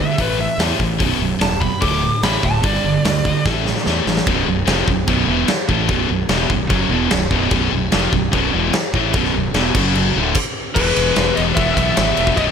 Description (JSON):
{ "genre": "hard rock", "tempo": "148 BPM", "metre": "4/4", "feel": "straight", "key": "unclear", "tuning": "A4 = 441 Hz", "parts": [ { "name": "biting lead guitar", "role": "melody", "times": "0.0-3.4, 10.7-12.4 s", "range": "B4 to D6", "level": "-22 LUFS", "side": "equal", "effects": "overdrive, tape echo" }, { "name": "distorted electric guitar", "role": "riff", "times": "0.0-10.4 s", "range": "B1 to A3", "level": "-23 LUFS", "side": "right 8 dB", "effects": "distortion" }, { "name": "scooped high-gain guitar", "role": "riff", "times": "0.0-12.5 s", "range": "B1 to A3", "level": "-21 LUFS", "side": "left 13 dB", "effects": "distortion" }, { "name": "fuzz fingered electric bass", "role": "bass", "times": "0.0-12.5 s", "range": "B0 to E2", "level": "-23 LUFS", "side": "equal", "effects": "overdrive" }, { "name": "big rock drum kit", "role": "drums", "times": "0.2-12.5 s", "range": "crash cymbal, hi-hat, kick drum, ride cymbal, snare drum", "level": "-20 LUFS", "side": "equal", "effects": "none" }, { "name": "distorted electric guitar", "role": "riff", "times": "4.3-12.5 s", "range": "B1 to A3", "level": "-24 LUFS", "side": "equal", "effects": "distortion" }, { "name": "sitar", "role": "second line", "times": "10.7-12.4 s", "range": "G#3 to B3", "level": "-28 LUFS", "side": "right 3 dB", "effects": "none" } ], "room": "small room ambience", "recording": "none", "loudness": "-15 LUFS", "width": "side -7 dB against mid", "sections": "0.0-4.3 A section; 4.3-10.7 B section; 10.7-12.5 C section", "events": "lead electric guitar solo 0.0-4.3; drum fill 3.5-4.3; stop 10.3-10.7", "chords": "0.2 A5; 1.0 B; 1.8 D5; 2.6 G5; 3.5 A5; 4.3 B5; 9.7 F#5; 10.1 D5; 10.7 E" }